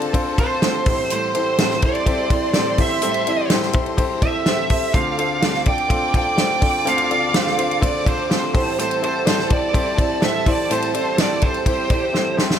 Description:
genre	piano-driven pop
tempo	125 BPM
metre	4/4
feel	straight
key	unclear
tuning	A4 = 440 Hz
part	clear symphonic violin section	second line	0.0-12.4 s	G4 to D6	-29 LUFS	left 1 dB	none
part	warm upright piano	accompaniment	0.0-12.6 s	A1 to D5	-24 LUFS	left 4 dB	none
part	fingerpicked steel-string acoustic guitar	riff	0.0-12.6 s	A2 to C5	-28 LUFS	right 6 dB	none
part	natural country drum kit	drums	0.0-12.6 s	hi-hat, kick drum, ride cymbal, snare drum	-20 LUFS	equal	none
part	bluesy overdriven lead guitar	melody	0.4-12.3 s	C5 to G5	-22 LUFS	right 3 dB	distortion
room	light reverb, studio reverb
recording	none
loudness	-16 LUFS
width	side -9 dB against mid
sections	0.0-12.6 A section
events	drum fill 12.1-12.6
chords	0.0 Dm7; 0.9 Am7; 4.9 Dm7; 8.5 Am7

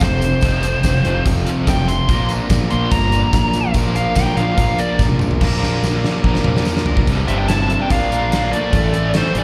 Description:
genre	classic rock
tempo	145 BPM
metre	4/4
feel	straight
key	unclear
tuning	A4 = 440 Hz
part	nasal lead guitar with a parked wah	melody	0.0-9.4 s	C5 to C6	-24 LUFS	equal	overdrive, slapback echo
part	biting overdriven guitar	riff	0.0-9.4 s	C2 to Bb3	-27 LUFS	equal	slapback echo
part	overdriven electric guitar	riff	0.0-9.4 s	C2 to Bb3	-29 LUFS	equal	none
part	tight distorted guitar	riff	0.0-9.4 s	C2 to Bb4	-27 LUFS	equal	distortion
part	fuzz fingered electric bass	bass	0.0-9.4 s	F1 to C2	-22 LUFS	equal	overdrive
part	gated 80s drum kit	drums	0.0-9.4 s	crash cymbal, hi-hat, kick drum, snare drum, toms	-21 LUFS	equal	none
part	tambourine	percussion	0.0-6.8 s	none	-40 LUFS	equal	none
part	octave-fuzz lead guitar	second line	7.3-9.4 s	G3 to E4	-28 LUFS	equal	distortion, slapback echo
room	small room ambience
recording	live gig heard through the venue's PA, recital hall reverb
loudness	-17 LUFS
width	mono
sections	0.0-5.4 A section; 5.4-7.1 B section; 7.1-9.4 C section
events	lead electric guitar solo 0.0-5.4; drum fill 5.0-5.4, 5.4-7.1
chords	0.0 F; 2.1 Bb; 7.1 C5; 7.9 Bb; 8.7 A5

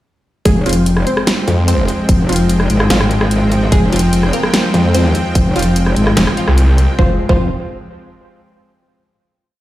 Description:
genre	heavy wobble dubstep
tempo	147 BPM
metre	4/4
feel	half-time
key	F minor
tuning	A4 = 440 Hz
part	wide unison pluck	melody	0.5-7.4 s	Ab3 to C5	-21 LUFS	equal	vintage 12-bit sampler grit, tape echo
part	supersaw pad	sustained chords	0.5-7.2 s	F3 to G5	-20 LUFS	equal	sidechain pumping
part	metallic wobble bass	bass	0.5-7.5 s	F1 to Ab1	-13 LUFS	equal	chorus, overdrive
part	dubstep drum kit	drums	0.5-6.9 s	hi-hat, rim click, snare drum	-18 LUFS	equal	none
part	electronic kick drum	drums	0.5-7.4 s	none	-14 LUFS	equal	none
part	orchestra-hit-like synth stab	stabs	0.7-7.4 s	F3 to F4	-22 LUFS	equal	built-in reverb, tape echo
part	snarling distorted saw bass	bass	1.5-1.9, 4.7-6.9 s	F1 to F2	-12 LUFS	equal	distortion, overdrive
room	light reverb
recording	played on a big sound system in a bare room, large studio reverb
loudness	-11 LUFS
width	side -15 dB against mid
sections	0.5-7.0 drop; 7.0-8.6 final chord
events	drop 0.5-7.0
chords	0.5 Fmadd9; 7.0 F5

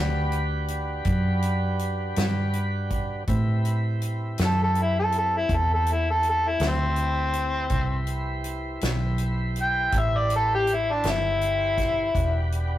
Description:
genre	slow blues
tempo	54 BPM (dotted quarters)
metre	12/8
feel	straight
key	unclear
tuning	A4 = 439 Hz
part	tonewheel organ	sustained chords	0.0-12.8 s	C4 to C5	-32 LUFS	right 1 dB	slow rotary speaker
part	vintage muted fingered electric bass	bass	0.0-12.8 s	E1 to A2	-26 LUFS	equal	none
part	natural country drum kit	drums	0.3-12.7 s	hi-hat, kick drum, snare drum	-30 LUFS	equal	none
part	overdriven harmonica	melody	4.5-12.5 s	C4 to G5	-24 LUFS	left 1 dB	none
room	moderate stone room reverb, RT60 1.1 s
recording	rough rehearsal-room recording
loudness	-22 LUFS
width	side -13 dB against mid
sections	0.0-12.8 A section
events	harmonica solo 0.0-12.8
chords	0.0 Em7 (rootless); 3.3 Am7; 12.1 Em7

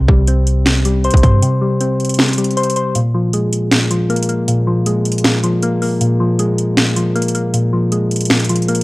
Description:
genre	hip hop, trap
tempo	157 BPM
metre	4/4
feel	half-time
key	unclear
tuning	A4 = 440 Hz
part	soft electric-piano-like synth keys	accompaniment	0.0-8.8 s	Bb2 to C5	-14 LUFS	left 1 dB	chorus
part	clean 808-style bass	bass	0.0-1.4 s	C2 to G2	-13 LUFS	equal	none
part	trap drum kit	drums	0.1-8.8 s	finger snaps, hi-hat, kick drum, snare drum	-16 LUFS	equal	overdrive
room	little or no reverb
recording	dry, gritty hardware recording, transformer saturation, cassette tape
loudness	-13 LUFS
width	side -21 dB against mid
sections	0.0-8.8 A section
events	break 1.4-3.0, 3.0-8.8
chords	0.0 C5; 3.0 Bb5

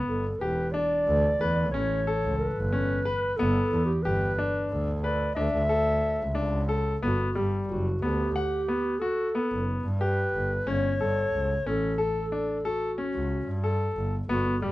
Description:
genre	contemporary instrumental, chamber music in an uneven meter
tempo	182 BPM (eighths)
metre	11/8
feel	straight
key	G lydian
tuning	A4 = 438 Hz
part	bright baby grand piano	arpeggios	0.0-14.7 s	G3 to F#5	-29 LUFS	left 2 dB	none
part	clear double bass	bass	0.0-14.7 s	E1 to G2	-29 LUFS	equal	none
part	breathy clarinet	melody	0.1-14.7 s	F#4 to E5	-29 LUFS	equal	none
room	light reverb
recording	dark, warm production, nothing above 10.6 kHz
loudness	-24 LUFS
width	side -17 dB against mid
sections	0.0-7.0 A section; 7.0-14.7 B section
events	none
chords	0.0 G; 1.7 A7; 3.4 G; 5.4 Dsus2; 7.0 Gmaj7; 10.7 Dmaj7/G (rootless)

